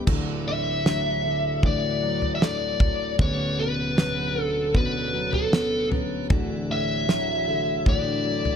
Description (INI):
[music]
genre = pop ballad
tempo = 77 BPM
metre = 4/4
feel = straight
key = D major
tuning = A4 = 440 Hz
[part]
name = dark concert grand piano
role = accompaniment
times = 0.0-8.6 s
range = D1 to B3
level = -30 LUFS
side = right 2 dB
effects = none
[part]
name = tonewheel organ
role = sustained chords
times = 0.0-8.6 s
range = D3 to D5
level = -35 LUFS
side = right 2 dB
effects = overdrive, slow rotary speaker
[part]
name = fingerpicked steel-string acoustic guitar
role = arpeggios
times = 0.0-8.6 s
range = D3 to F#4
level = -32 LUFS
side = left 5 dB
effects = none
[part]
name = damped 70s drum kit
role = drums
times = 0.1-8.6 s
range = crash cymbal, kick drum, snare drum, toms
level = -22 LUFS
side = equal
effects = none
[part]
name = biting lead guitar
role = melody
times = 0.5-8.6 s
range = A4 to E5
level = -26 LUFS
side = left 1 dB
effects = overdrive
[sound]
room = light reverb, small room ambience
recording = none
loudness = -22 LUFS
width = side -8 dB against mid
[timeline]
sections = 0.1-8.6 A section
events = none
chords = 0.1 Dadd9; 3.2 Bmadd9/D; 6.3 Dadd9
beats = | 0.07 0.85 1.63 2.41 | 3.19 3.97 4.75 5.53 | 6.31 7.09 7.87